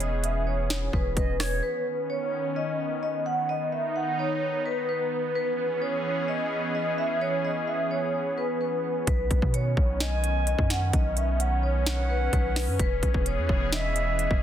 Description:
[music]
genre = hip hop, trap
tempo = 129 BPM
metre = 4/4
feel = half-time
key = B major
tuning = A4 = 440 Hz
[part]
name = vibraphone with medium mallets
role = melody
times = 0.0-14.4 s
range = B4 to F#5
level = -29 LUFS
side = equal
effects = low-pass filter, digital delay
[part]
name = warm analog pad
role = sustained chords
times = 0.0-14.4 s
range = D#3 to G#4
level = -32 LUFS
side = equal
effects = chorus
[part]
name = long sustained 808-style bass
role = bass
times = 0.0-1.6, 9.1-14.4 s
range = E1 to B2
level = -27 LUFS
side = equal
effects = none
[part]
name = trap drum kit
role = drums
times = 0.0-1.5, 9.1-14.4 s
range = hi-hat, kick drum, rim click, snare drum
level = -27 LUFS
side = equal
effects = none
[part]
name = reedy silver concert flute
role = second line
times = 1.2-1.6, 10.0-14.4 s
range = C#5 to G#5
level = -34 LUFS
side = right 4 dB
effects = digital delay
[sound]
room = light reverb, digital ambience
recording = dense, heavily limited modern master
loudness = -24 LUFS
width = side -10 dB against mid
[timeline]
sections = 0.0-1.6 A section; 1.6-14.4 A section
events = none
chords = 0.0 E6; 1.6 Badd9; 5.4 E6; 9.1 Badd9; 12.8 E6

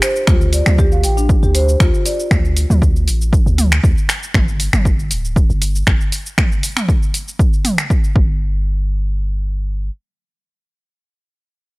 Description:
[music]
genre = afro house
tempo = 118 BPM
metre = 4/4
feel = straight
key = unclear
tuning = A4 = 443 Hz
[part]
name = marimba with medium mallets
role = arpeggios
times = 0.0-2.1 s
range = D4 to G5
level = -20 LUFS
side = equal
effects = sidechain pumping, analog delay
[part]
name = deep house drum kit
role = drums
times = 0.0-8.1 s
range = finger snaps, hi-hat, shaker, toms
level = -19 LUFS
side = equal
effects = overdrive
[part]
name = warm 808-style bass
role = bass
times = 0.3-9.9 s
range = D1 to D2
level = -16 LUFS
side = equal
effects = transformer saturation, sidechain pumping
[part]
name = electronic kick drum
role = drums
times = 0.3-8.3 s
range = none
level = -15 LUFS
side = equal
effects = overdrive
[sound]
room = digital ambience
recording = dry, gritty hardware recording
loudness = -13 LUFS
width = side -23 dB against mid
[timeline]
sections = 0.0-8.4 A section; 8.4-11.8 B section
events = drop 0.0-8.4; band accent 8.2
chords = 0.3 D5; 4.3 G5; 8.2 N.C.

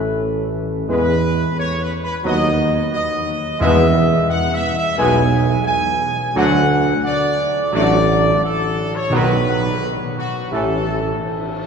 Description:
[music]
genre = classical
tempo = 87 BPM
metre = 4/4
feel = straight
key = E major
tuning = A4 = 438 Hz
[part]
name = dark trumpet section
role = melody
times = 0.0-11.6 s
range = F#4 to G#5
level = -20 LUFS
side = equal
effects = none
[part]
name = clear trombone section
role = sustained chords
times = 0.0-10.8 s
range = B2 to A3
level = -25 LUFS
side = right 2 dB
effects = none
[part]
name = mellow French horn section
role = sustained chords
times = 0.0-10.8 s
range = A3 to B4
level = -25 LUFS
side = left 4 dB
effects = none
[part]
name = dark tuba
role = bass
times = 0.0-11.1 s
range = A1 to E2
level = -20 LUFS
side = right 2 dB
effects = none
[part]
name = timpani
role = percussion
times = 3.6-4.6, 9.1-10.1 s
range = E2 to B2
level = -27 LUFS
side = left 2 dB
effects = none
[sound]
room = wet cathedral reverb, RT60 5.1 s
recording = minimal, uncompressed stereo recording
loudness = -15 LUFS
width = side -6 dB against mid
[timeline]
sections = 0.0-11.7 A section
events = none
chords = 0.0 Aadd9; 0.9 E; 2.3 B/D#; 3.6 E; 6.4 D; 9.1 B; 10.5 A7

